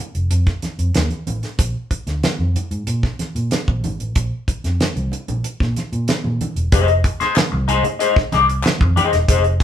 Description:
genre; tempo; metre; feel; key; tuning
funk; 94 BPM; 4/4; straight; F dorian; A4 = 442 Hz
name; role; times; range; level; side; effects
vintage muted fingered electric bass; bass; 0.1-9.6 s; E1 to Bb2; -20 LUFS; equal; none
damped 70s drum kit; drums; 0.1-9.6 s; hi-hat, kick drum, snare drum; -20 LUFS; right 1 dB; none
congas; percussion; 0.3-9.6 s; none; -28 LUFS; right 2 dB; none
electric guitar at the edge of break-up; accompaniment; 6.7-9.6 s; Eb4 to D5; -17 LUFS; left 6 dB; wah
group handclap; percussion; 7.4-8.8 s; none; -25 LUFS; left 3 dB; none
room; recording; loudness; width
wet studio reverb, RT60 0.6 s; band playing live in one room; -16 LUFS; side -10 dB against mid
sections
0.0-6.7 A section; 6.7-9.6 B section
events
none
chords
0.0 F7(no3); 1.6 N.C.; 6.7 Fm7

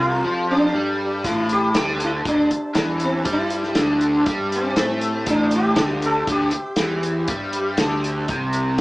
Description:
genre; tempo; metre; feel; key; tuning
psychedelic rock; 119 BPM; 4/4; straight; unclear; A4 = 440 Hz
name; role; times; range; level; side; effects
sitar; melody; 0.0-8.8 s; C4 to A4; -23 LUFS; equal; none
combo organ; sustained chords; 0.0-8.8 s; G4 to A5; -34 LUFS; equal; none
overdriven electric guitar; riff; 0.0-8.8 s; A2 to A3; -22 LUFS; equal; rotary speaker
fuzz fingered electric bass; bass; 0.0-8.8 s; A1 to A2; -28 LUFS; equal; overdrive
vintage drum kit; drums; 1.2-8.8 s; hi-hat, kick drum, snare drum; -24 LUFS; equal; none
room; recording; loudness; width
moderate small room reverb, RT60 0.5 s; band playing live in one room, small speaker sound; -18 LUFS; side -20 dB against mid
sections
0.0-8.8 A section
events
none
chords
0.0 Gsus2; 1.2 Am7

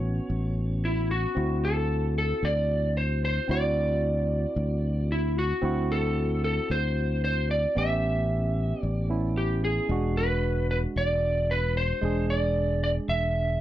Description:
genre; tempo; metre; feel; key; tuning
straight-eighth soul blues; 113 BPM; 4/4; straight; unclear; A4 = 440 Hz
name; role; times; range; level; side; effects
electric slide guitar; melody; 0.0-13.6 s; E4 to E5; -28 LUFS; equal; none
barky tine electric piano; accompaniment; 0.0-13.6 s; G#3 to G#4; -33 LUFS; right 2 dB; none
fingered electric bass; bass; 0.0-13.6 s; E1 to D2; -27 LUFS; equal; none
room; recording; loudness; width
little or no reverb; dry, close 1970s-style studio recording; -24 LUFS; side -13 dB against mid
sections
0.0-13.6 A section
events
none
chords
0.0 Aadd9; 1.4 D9; 7.8 A9; 9.9 E9

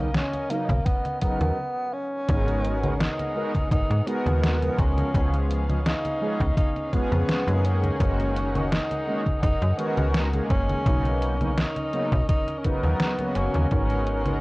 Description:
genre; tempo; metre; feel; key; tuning
vaporwave; 84 BPM; 4/4; straight; B lydian; A4 = 442 Hz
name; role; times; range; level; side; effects
breathy tenor saxophone; melody; 0.0-14.4 s; A#3 to D#4; -29 LUFS; equal; tape echo
mellow synth brass; accompaniment; 0.0-14.4 s; C#3 to A#4; -30 LUFS; equal; wide subtle chorus, tape echo
clear studio string section; sustained chords; 0.0-14.4 s; B3 to F#5; -36 LUFS; equal; none
slap-like FM bass; bass; 0.0-14.4 s; F#1 to G#2; -24 LUFS; equal; none
detuned 8-bit digital drum machine; drums; 0.1-14.4 s; congas, hi-hat, snare drum; -30 LUFS; equal; overdrive, studio reverb
electronic kick drum; drums; 0.7-13.9 s; none; -24 LUFS; equal; overdrive, studio reverb
room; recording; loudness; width
digital ambience; worn, warbling old tape, cassette tape, warbly pitch drift; -22 LUFS; side -22 dB against mid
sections
0.0-2.3 A section; 2.3-14.4 B section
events
break 1.6-2.3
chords
0.0 Bmaj9; 2.3 G#m9; 4.8 C#7; 7.6 F#69; 10.9 Bmaj9; 13.7 G#m9

